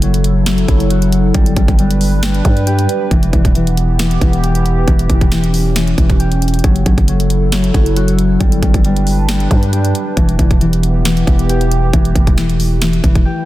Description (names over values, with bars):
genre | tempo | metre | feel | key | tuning
hip hop, trap | 136 BPM | 4/4 | half-time | unclear | A4 = 440 Hz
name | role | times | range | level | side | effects
dark analog pad | sustained chords | 0.0-13.5 s | E3 to B4 | -21 LUFS | right 2 dB | chorus, phaser
concert harp | arpeggios | 0.0-13.5 s | E3 to G4 | -17 LUFS | left 3 dB | digital delay
growling 808-style bass | bass | 0.0-13.2 s | E1 to G2 | -15 LUFS | equal | none
trap drum kit | drums | 0.0-13.3 s | finger snaps, hi-hat, kick drum, snare drum | -14 LUFS | equal | none
room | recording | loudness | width
little or no reverb | dense, heavily limited modern master | -11 LUFS | side -16 dB against mid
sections
0.0-13.5 A section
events
break 13.3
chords
0.0 F#m7; 1.3 G; 3.1 Em; 6.6 F#m7; 8.4 G; 10.2 Em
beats
0.02 0.46 0.91 | 1.35 1.79 2.23 2.67 | 3.11 3.55 3.99 4.43 | 4.88 5.32 5.76 6.20 | 6.64 7.08 7.52 7.96 | 8.40 8.85 9.29 9.73 | 10.17 10.61 11.05 11.49 | 11.94 12.38 12.82 13.26